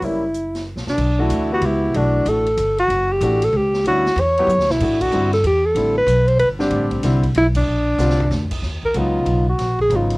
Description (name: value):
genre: modal jazz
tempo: 188 BPM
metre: 3/4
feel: swing 64% on 8ths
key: B phrygian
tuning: A4 = 440 Hz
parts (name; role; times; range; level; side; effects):
- dark alto saxophone; melody; 0.0-10.2 s; D4 to C#5; -18 LUFS; equal; cassette tape
- warm concert grand piano; accompaniment; 0.0-10.2 s; Db3 to G4; -23 LUFS; left 1 dB; cassette tape
- upright bass; bass; 0.0-10.2 s; Gb1 to A2; -21 LUFS; equal; none
- swinging big-band drum kit; drums; 0.0-10.2 s; crash cymbal, hi-hat, kick drum, ride cymbal, snare drum, toms; -31 LUFS; equal; cassette tape
room: little or no reverb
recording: home recording on cassette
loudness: -16 LUFS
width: side -24 dB against mid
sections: 1.0-8.6 A section; 8.6-10.2 B section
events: drum fill 0.7-1.0, 4.5-4.8, 8.0-8.3; band accent 5.0, 7.5; alto saxophone solo 8.6-10.2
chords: 0.0 Gb7b9; 1.0 Bm11; 4.8 Am11; 7.7 A#69; 8.6 Eb9sus4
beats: | 0.03 0.35 0.67 | 0.98 1.30 1.62 | 1.94 2.26 2.58 | 2.89 3.21 3.53 | 3.85 4.17 4.49 | 4.80 5.12 5.44 | 5.76 6.08 6.40 | 6.72 7.04 7.36 | 7.67 7.99 8.31 | 8.63 8.95 9.27 | 9.59 9.91